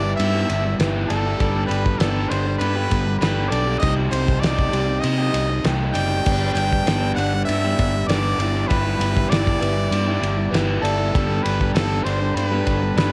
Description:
indie rock; 98 BPM; 4/4; straight; G major; A4 = 440 Hz
brilliant trumpet; melody; 0.0-13.1 s; A4 to G5; -28 LUFS; equal; cassette tape
tine electric piano; second line; 0.0-13.1 s; A5 to G6; -36 LUFS; equal
mellow tonewheel organ; sustained chords; 0.0-13.1 s; Eb4 to D6; -36 LUFS; equal
overdriven electric guitar; riff; 0.0-13.1 s; C3 to G4; -29 LUFS; equal; cassette tape
overdriven electric guitar; riff; 0.0-13.1 s; C3 to D5; -30 LUFS; equal; subtle chorus, cassette tape
fingered electric bass; bass; 0.0-13.1 s; F#1 to C3; -26 LUFS; equal
cloth-damped thuddy drum kit; drums; 0.2-13.1 s; crash cymbal, kick drum, ride cymbal, snare drum; -27 LUFS; equal; cassette tape
studio reverb; home recording on cassette; -20 LUFS; mono
0.0-13.1 A section
0.0 Em7/G; 1.4 Gadd9; 3.8 Cmadd9; 6.3 Gadd9; 8.4 Em7/G; 11.1 Gadd9

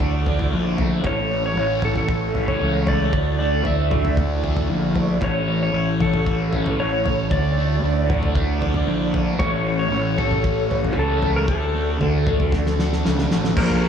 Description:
psychedelic rock; 115 BPM; 4/4; straight; A4 = 440 Hz
clean lap steel guitar; melody; 0.0-13.9 s; A4 to E5; -25 LUFS; left 2 dB; diffuse ambient delay
string machine, violas; sustained chords; 0.0-13.9 s; A3 to D5; -28 LUFS; right 3 dB; ensemble chorus
fuzz guitar; riff; 0.0-13.9 s; A2 to D4; -25 LUFS; equal; distortion, phaser
fuzz fingered electric bass; bass; 0.0-13.9 s; A1 to D2; -23 LUFS; equal; overdrive
cloth-damped thuddy drum kit; drums; 0.0-13.8 s; crash cymbal, kick drum, snare drum, toms; -24 LUFS; equal
moderate lush hall reverb, RT60 1.8 s, studio ambience; dreamy mix soaked in reverb; -18 LUFS; side -8 dB against mid
0.0-13.6 A section
drum fill 12.5-13.6
0.0 Dsus2; 1.0 A; 3.1 Dsus2; 5.2 A; 7.3 Dsus2; 9.4 A; 11.5 Dsus2

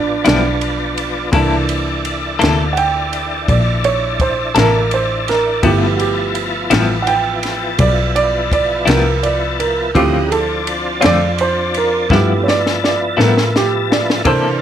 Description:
slow blues; 56 BPM (dotted quarters); 12/8; straight; G mixolydian; A4 = 442 Hz
dark grand piano; accompaniment; 0.0-14.6 s; E3 to G5; -18 LUFS; right 5 dB
tonewheel organ; sustained chords; 0.0-14.6 s; C#3 to A5; -21 LUFS; left 2 dB; slow rotary speaker, chorus vibrato
warm double bass; bass; 0.0-14.6 s; G1 to C3; -20 LUFS; left 1 dB
clean electric guitar; accompaniment; 0.2-14.5 s; G2 to A4; -17 LUFS; left 5 dB; tremolo
compact cocktail drum kit; drums; 0.3-14.4 s; kick drum, ride cymbal, snare drum; -20 LUFS; left 1 dB
little or no reverb; -13 LUFS; side -10 dB against mid
0.0-14.6 A section
grand piano solo 0.0-14.6; drum fill 12.1-14.3
0.0 G13; 1.3 C13; 5.6 G13; 10.0 Dm7; 12.1 G13

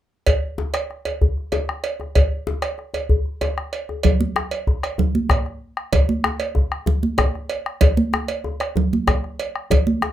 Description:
west african traditional, West African drum ensemble; 127 BPM (dotted quarters); 12/8; straight
bombo; percussion; 0.3-10.1 s; -20 LUFS; left 1 dB
cowbell; percussion; 0.3-9.9 s; -26 LUFS; right 5 dB
djembe; percussion; 0.3-10.1 s; -22 LUFS; left 2 dB
congas; percussion; 4.0-10.1 s; -22 LUFS; right 4 dB
wet small room ambience, RT60 0.5 s; rough home demo mix; -19 LUFS; side -12 dB against mid
0.3-4.0 A section; 4.0-10.1 B section

